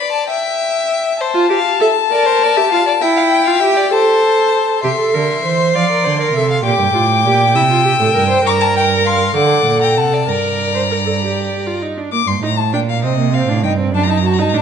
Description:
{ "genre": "classical, baroque-style fugue for string quartet", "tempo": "66 BPM (dotted quarters)", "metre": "6/8", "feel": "straight", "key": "G minor from 8.5 s", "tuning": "A4 = 440 Hz", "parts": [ { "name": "rich violin", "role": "melody", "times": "0.0-14.6 s", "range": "Eb5 to E6", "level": "-18 LUFS", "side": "left 10 dB", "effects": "none" }, { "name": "rich violin", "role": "second line", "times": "0.0-11.8 s", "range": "Bb4 to Bb5", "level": "-18 LUFS", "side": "left 2 dB", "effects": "none" }, { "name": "rich viola", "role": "accompaniment", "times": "1.3-14.6 s", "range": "Bb3 to D5", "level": "-16 LUFS", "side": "right 3 dB", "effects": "none" }, { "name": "warm cello", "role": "bass", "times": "4.8-14.6 s", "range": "F#2 to F3", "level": "-18 LUFS", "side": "right 5 dB", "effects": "none" } ], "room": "wet recital hall reverb, RT60 1.7 s", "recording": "nothing above 10.4 kHz", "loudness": "-12 LUFS", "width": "side -7 dB against mid", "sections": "0.0-4.8 A section; 4.8-12.1 B section; 12.1-14.6 C section", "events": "none", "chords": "0.3 Em; 1.2 F; 2.1 Bb; 3.0 Em; 3.9 Am; 5.8 Dm7; 6.7 Gm; 7.6 C7; 8.5 Gm; 9.4 D7; 10.3 Gm; 13.9 D/F#" }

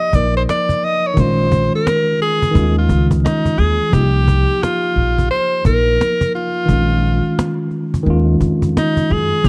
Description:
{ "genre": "hip hop, jazz-hop", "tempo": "87 BPM", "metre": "4/4", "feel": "swing 62% on 16ths", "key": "C phrygian", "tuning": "A4 = 445 Hz", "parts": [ { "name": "breathy alto saxophone", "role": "melody", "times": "0.0-9.5 s", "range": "Eb4 to Eb5", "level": "-20 LUFS", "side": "equal", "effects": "none" }, { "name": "tine electric piano", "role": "accompaniment", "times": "0.0-9.5 s", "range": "Eb3 to Bb4", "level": "-22 LUFS", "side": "equal", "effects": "overdrive" }, { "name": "upright bass", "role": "bass", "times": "0.1-9.5 s", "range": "Bb1 to Gb2", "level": "-19 LUFS", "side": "equal", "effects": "none" }, { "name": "cajon", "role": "drums", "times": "0.1-9.5 s", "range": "none", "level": "-21 LUFS", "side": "equal", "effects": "none" } ], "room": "light reverb, studio reverb", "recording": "dark, warm production, vinyl crackle", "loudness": "-16 LUFS", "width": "mono", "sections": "0.0-3.9 A section; 3.9-9.5 B section", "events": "alto saxophone solo 0.0-3.9", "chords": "0.0 Cm7 (rootless); 1.2 Bbm7; 2.6 Eb9sus4; 3.9 Cm7; 6.7 Bbm7; 8.1 Ebm11" }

